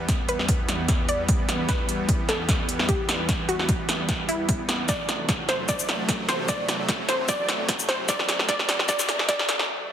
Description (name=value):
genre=heavy wobble dubstep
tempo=150 BPM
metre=4/4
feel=swing 54% on 16ths, half-time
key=E minor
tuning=A4 = 440 Hz
part: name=wide unison pluck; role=melody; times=0.0-9.7 s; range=E4 to D5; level=-28 LUFS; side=equal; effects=tape echo
part: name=supersaw pad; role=sustained chords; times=0.0-9.9 s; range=E2 to B3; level=-31 LUFS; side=right 1 dB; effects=sidechain pumping
part: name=big-room dance drum kit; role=drums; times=0.1-9.7 s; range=hi-hat, shaker, snare drum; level=-25 LUFS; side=equal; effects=overdrive, high-pass filter on hats, high-pass filter on snare, high-pass filter on perc, high-pass filter on room
part: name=electronic kick drum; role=drums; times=0.1-9.4 s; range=none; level=-26 LUFS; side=equal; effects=overdrive
room=moderate lush hall reverb, RT60 1.6 s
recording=dense, heavily limited modern master, high-pass filter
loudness=-22 LUFS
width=side -9 dB against mid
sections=0.0-9.9 A section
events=build-up 0.0-9.9; drum fill 0.0-9.7; filter sweep 0.0-9.9; break 9.7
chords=0.0 Em; 4.9 F#dim/E